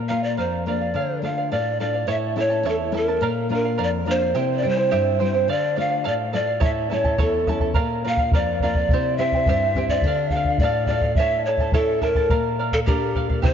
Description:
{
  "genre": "andean folk, Andean ensemble",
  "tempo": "106 BPM",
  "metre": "2/4",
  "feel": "straight",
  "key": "D minor",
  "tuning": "A4 = 439 Hz",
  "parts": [
    { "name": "charango", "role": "accompaniment", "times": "0.0-13.5 s", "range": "E4 to A5", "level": "-28 LUFS", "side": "right 6 dB", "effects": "none" },
    { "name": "nylon-string guitar", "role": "accompaniment", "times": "0.0-13.5 s", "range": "E2 to A4", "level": "-26 LUFS", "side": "left 4 dB", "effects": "lush chorus" },
    { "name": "breathy mellow large pan pipes", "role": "melody", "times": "0.1-13.5 s", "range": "G4 to F5", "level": "-22 LUFS", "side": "right 1 dB", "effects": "diffuse ambient delay" },
    { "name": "bombo", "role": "percussion", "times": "6.6-13.5 s", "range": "none", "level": "-22 LUFS", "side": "equal", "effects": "none" }
  ],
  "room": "moderate plate reverb, RT60 3.1 s",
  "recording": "dreamy mix soaked in reverb, cassette tape, nothing above 7.5 kHz",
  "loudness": "-19 LUFS",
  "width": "side -8 dB against mid",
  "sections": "0.0-2.1 A section; 2.1-11.2 B section; 11.2-13.5 B section",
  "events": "none",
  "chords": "0.0 Bb; 0.9 Dm; 2.1 A; 3.2 Bb; 4.4 C; 5.5 Dm; 6.6 A; 7.8 Bb; 8.9 C; 10.0 Dm; 11.2 A; 12.3 Bb"
}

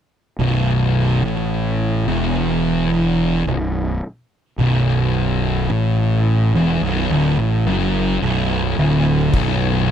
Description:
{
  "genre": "stoner and doom metal",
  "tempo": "54 BPM",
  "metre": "4/4",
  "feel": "straight",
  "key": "B minor",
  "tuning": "A4 = 442 Hz",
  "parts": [
    { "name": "thick fuzz guitar", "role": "riff", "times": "0.4-9.9 s", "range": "B1 to A2", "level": "-20 LUFS", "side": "left 8 dB", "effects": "distortion" },
    { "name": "thick fuzz guitar", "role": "riff", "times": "0.4-9.9 s", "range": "B1 to A2", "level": "-19 LUFS", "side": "right 6 dB", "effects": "distortion" },
    { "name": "fuzz fingered electric bass", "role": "bass", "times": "0.4-9.9 s", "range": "B0 to A1", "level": "-21 LUFS", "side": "equal", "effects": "overdrive, tube saturation" },
    { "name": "oversized low-tuned drum kit", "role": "drums", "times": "9.3-9.6 s", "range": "crash cymbal, kick drum", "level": "-22 LUFS", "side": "left 1 dB", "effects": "none" }
  ],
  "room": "little or no reverb",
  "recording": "dry, close 1970s-style studio recording",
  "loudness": "-16 LUFS",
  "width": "side -9 dB against mid",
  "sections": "0.4-9.3 A section",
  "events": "none",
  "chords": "0.4 Bm; 9.3 N.C."
}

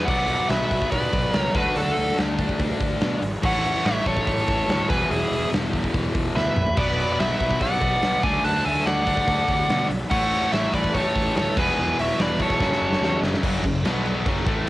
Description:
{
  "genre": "hard rock",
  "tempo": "144 BPM",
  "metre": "4/4",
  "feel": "straight",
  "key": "unclear",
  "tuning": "A4 = 440 Hz",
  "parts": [
    { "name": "dark smooth lead guitar", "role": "melody", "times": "0.0-13.2 s", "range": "G#4 to A5", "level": "-24 LUFS", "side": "equal", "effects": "overdrive, cassette tape" },
    { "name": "cranked stack guitar", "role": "riff", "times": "0.0-14.7 s", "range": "E2 to D4", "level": "-33 LUFS", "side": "right 6 dB", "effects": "none" },
    { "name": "distorted electric guitar", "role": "riff", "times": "0.0-14.7 s", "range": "E2 to D4", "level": "-28 LUFS", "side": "left 4 dB", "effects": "overdrive, cassette tape" },
    { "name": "fuzz picked electric bass", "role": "bass", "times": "0.0-14.7 s", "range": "E1 to B2", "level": "-29 LUFS", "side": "equal", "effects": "overdrive" },
    { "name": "octave-fuzz lead guitar", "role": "second line", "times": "0.1-13.2 s", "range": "E4 to F#5", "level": "-29 LUFS", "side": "right 2 dB", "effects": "distortion, cassette tape" },
    { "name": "huge arena drum kit", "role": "drums", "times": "0.1-14.7 s", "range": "crash cymbal, hi-hat, kick drum, snare drum, toms", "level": "-25 LUFS", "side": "equal", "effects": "cassette tape" },
    { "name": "distorted electric guitar", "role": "riff", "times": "6.8-14.7 s", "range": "E2 to D4", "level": "-31 LUFS", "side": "equal", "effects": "overdrive, cassette tape" }
  ],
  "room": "light reverb",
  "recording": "home recording on cassette",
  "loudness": "-20 LUFS",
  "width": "side -17 dB against mid",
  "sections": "0.1-13.4 A section; 13.4-14.7 B section",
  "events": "drum fill 6.4-6.8, 12.6-13.4",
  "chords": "0.1 Bm; 1.6 D; 3.4 A; 4.9 E; 6.8 Bm; 8.2 D; 10.1 A; 11.6 E; 12.6 F#m; 13.4 F#5; 13.8 B5; 14.3 F#5"
}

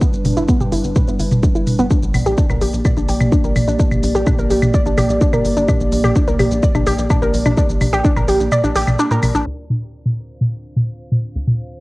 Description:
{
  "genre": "melodic techno",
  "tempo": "127 BPM",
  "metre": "4/4",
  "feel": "straight",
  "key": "unclear",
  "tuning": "A4 = 440 Hz",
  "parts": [
    { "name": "dark analog pad", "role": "sustained chords", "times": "0.0-11.8 s", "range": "G3 to F5", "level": "-22 LUFS", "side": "equal", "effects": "chorus, sidechain pumping, cassette tape" },
    { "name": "warbly dusty pluck", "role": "arpeggios", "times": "0.0-9.4 s", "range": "B3 to D5", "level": "-20 LUFS", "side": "equal", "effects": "chorus, sidechain pumping, cassette tape, tape echo" },
    { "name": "electronic kick drum", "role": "drums", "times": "0.0-8.1 s", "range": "none", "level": "-17 LUFS", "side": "equal", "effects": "studio reverb, cassette tape" },
    { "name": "techno drum kit", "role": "drums", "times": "0.0-11.6 s", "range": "claves, hi-hat, shaker, toms", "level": "-20 LUFS", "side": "equal", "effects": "sidechain pumping on perc, low-pass filter on perc, studio reverb, cassette tape, sidechain pumping on hats, low-pass filter on hats, sidechain pumping on toms, low-pass filter on toms" },
    { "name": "tight sequencer bass", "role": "bass", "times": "0.1-11.8 s", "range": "G1 to Bb2", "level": "-22 LUFS", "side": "equal", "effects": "sidechain pumping" }
  ],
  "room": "light reverb, digital ambience",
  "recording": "home recording on cassette, low-pass filter",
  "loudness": "-14 LUFS",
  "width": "side -20 dB against mid",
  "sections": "0.0-9.5 A section; 9.5-11.8 B section",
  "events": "filter sweep on synth arpeggio sound 0.0-9.5; kick drops out 8.5-9.5; filter sweep on analog synth pad 9.5-11.8; filter sweep 9.5-11.8",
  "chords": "0.0 G6; 1.9 Bb6; 9.5 Dm7"
}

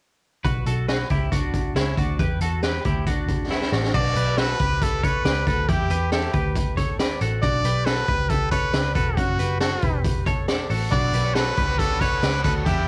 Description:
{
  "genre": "jangly indie pop",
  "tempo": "138 BPM",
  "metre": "4/4",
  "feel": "straight",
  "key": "B minor",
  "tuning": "A4 = 440 Hz",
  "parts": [
    { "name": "twelve-string electric guitar", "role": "arpeggios", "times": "0.4-12.9 s", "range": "B3 to D5", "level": "-31 LUFS", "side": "equal", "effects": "cassette tape" },
    { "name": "vintage muted picked electric bass", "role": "bass", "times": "0.4-12.8 s", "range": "E1 to E2", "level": "-28 LUFS", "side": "equal", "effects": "none" },
    { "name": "raw garage drum kit", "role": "drums", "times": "0.4-12.8 s", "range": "crash cymbal, hi-hat, kick drum, snare drum", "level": "-27 LUFS", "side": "equal", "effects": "cassette tape" },
    { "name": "brilliant trumpet", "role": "melody", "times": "3.9-12.9 s", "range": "F#4 to D5", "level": "-28 LUFS", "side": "equal", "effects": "cassette tape" },
    { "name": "biting overdriven guitar", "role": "accompaniment", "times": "10.9-12.9 s", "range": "E3 to C#5", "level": "-34 LUFS", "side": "equal", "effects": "cassette tape" }
  ],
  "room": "light reverb",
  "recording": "home recording on cassette",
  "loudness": "-23 LUFS",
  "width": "mono",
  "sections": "0.4-3.9 A section; 3.9-12.9 B section",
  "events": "drum fill 3.5-3.9",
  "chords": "0.4 Bmadd9; 2.2 Em7; 3.9 Bmadd9; 5.7 Em7; 7.4 Bmadd9"
}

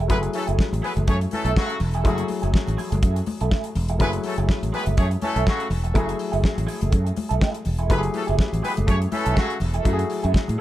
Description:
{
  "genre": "disco",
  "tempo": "123 BPM",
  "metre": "4/4",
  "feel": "swing 56% on 16ths",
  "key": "F# minor",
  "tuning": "A4 = 441 Hz",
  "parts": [
    { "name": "clean electric guitar", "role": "accompaniment", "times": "0.0-10.6 s", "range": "A3 to A4", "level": "-31 LUFS", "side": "right 7 dB", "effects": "wah, lush chorus" },
    { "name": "warm grand piano", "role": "accompaniment", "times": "0.0-10.6 s", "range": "F#3 to A4", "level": "-29 LUFS", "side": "left 4 dB", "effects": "none" },
    { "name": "fingered electric bass", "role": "bass", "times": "0.0-10.6 s", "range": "E1 to A2", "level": "-23 LUFS", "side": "equal", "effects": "none" },
    { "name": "clear horn section", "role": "stabs", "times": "0.1-9.6 s", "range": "C#3 to C#5", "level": "-29 LUFS", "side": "left 2 dB", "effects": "tape echo" },
    { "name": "damped 70s drum kit", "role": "drums", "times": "0.1-10.6 s", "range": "hi-hat, kick drum, snare drum", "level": "-23 LUFS", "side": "equal", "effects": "none" },
    { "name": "congas", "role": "percussion", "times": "0.6-10.6 s", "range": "none", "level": "-33 LUFS", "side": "left 4 dB", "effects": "none" }
  ],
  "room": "studio ambience",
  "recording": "none",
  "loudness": "-20 LUFS",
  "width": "side -14 dB against mid",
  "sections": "0.0-10.6 A section",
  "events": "grand piano fill 10.3",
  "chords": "0.0 F#m9"
}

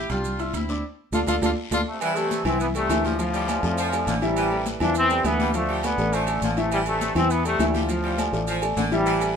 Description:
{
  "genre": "latin, salsa",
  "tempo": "204 BPM",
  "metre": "4/4",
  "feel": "straight",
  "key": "A minor",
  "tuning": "A4 = 440 Hz",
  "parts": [
    { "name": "clear horn section", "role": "melody", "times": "0.0-1.8 s", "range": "C4 to A4", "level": "-28 LUFS", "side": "equal", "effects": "none" },
    { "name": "clear baby grand piano", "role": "accompaniment", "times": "0.0-9.4 s", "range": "E3 to E6", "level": "-27 LUFS", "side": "left 4 dB", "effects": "none" },
    { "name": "fingered electric bass", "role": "bass", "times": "0.0-9.4 s", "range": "A1 to F2", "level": "-28 LUFS", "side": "right 1 dB", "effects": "none" },
    { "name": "congas", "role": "percussion", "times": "0.1-9.4 s", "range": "none", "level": "-32 LUFS", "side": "left 4 dB", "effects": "none" },
    { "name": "guiro", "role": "percussion", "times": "0.1-9.4 s", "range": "none", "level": "-40 LUFS", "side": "left 6 dB", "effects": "none" },
    { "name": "maracas", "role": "percussion", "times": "0.1-9.4 s", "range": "none", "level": "-39 LUFS", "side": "right 9 dB", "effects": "none" },
    { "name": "timbales and agogo bells", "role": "percussion", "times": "0.1-9.4 s", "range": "none", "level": "-30 LUFS", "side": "right 6 dB", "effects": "none" },
    { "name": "brilliant trombone section", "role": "melody", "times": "1.9-9.3 s", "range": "A2 to D4", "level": "-25 LUFS", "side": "equal", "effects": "none" },
    { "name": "clear saxophone section", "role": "second line", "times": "2.0-9.4 s", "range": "D3 to G3", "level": "-31 LUFS", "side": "right 1 dB", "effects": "none" }
  ],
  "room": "moderate studio reverb, RT60 0.7 s",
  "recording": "minimal, uncompressed stereo recording",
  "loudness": "-21 LUFS",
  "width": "side -7 dB against mid",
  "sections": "0.0-2.0 A section; 2.0-9.4 B section",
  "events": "band accent 0.8-2.0; drum fill 1.1-2.0",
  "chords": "0.0 Am7 (rootless); 0.8 Dm; 2.0 Am7"
}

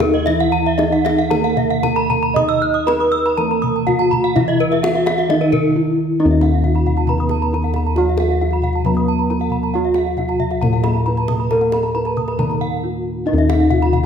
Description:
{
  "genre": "Balinese gamelan",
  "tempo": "115-136 BPM",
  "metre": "4/4",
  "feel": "straight",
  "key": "Eb pelog",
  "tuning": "A4 = 440 Hz",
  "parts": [
    { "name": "gamelan-type bronze metallophone", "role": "melody", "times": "0.0-14.1 s", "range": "Eb4 to Eb5", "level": "-20 LUFS", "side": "equal", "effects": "none" },
    { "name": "gamelan-type bronze metallophone", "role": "accompaniment", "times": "0.0-14.1 s", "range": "Eb3 to Eb4", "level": "-24 LUFS", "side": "right 6 dB", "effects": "none" },
    { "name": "gamelan-type bronze metallophone", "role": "arpeggios", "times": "0.0-14.0 s", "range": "Bb4-45c to Gb6-50c", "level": "-23 LUFS", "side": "left 4 dB", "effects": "none" },
    { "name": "gamelan-type bossed gongs", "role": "bass", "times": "0.0-14.1 s", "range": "Eb2 to Eb5", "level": "-19 LUFS", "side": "left 1 dB", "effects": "none" },
    { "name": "kendang", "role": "percussion", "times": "0.0-14.1 s", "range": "none", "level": "-24 LUFS", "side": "left 2 dB", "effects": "none" },
    { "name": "gamelan-type bronze metallophone", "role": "arpeggios", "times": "0.1-13.9 s", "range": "Cb5-40c to Fb6", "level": "-24 LUFS", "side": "right 6 dB", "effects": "none" }
  ],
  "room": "moderate scoring stage reverb, RT60 1.6 s",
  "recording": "none",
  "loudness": "-14 LUFS",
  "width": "side -7 dB against mid",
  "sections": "0.0-6.2 A section; 6.2-14.1 B section",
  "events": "break 12.6-13.3",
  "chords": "none"
}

